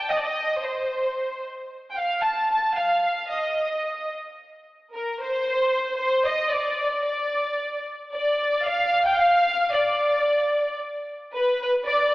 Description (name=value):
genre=mexican folk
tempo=112 BPM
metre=3/4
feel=swing 54% on 8ths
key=unclear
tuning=A4 = 440 Hz
part: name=warm symphonic violin section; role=solo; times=0.0-12.1 s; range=Bb4 to A5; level=-22 LUFS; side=equal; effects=none
room=wet lush hall reverb, RT60 2.1 s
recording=dreamy mix soaked in reverb, AM radio sound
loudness=-21 LUFS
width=side -18 dB against mid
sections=0.0-8.1 A section; 8.1-12.1 A section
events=none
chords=none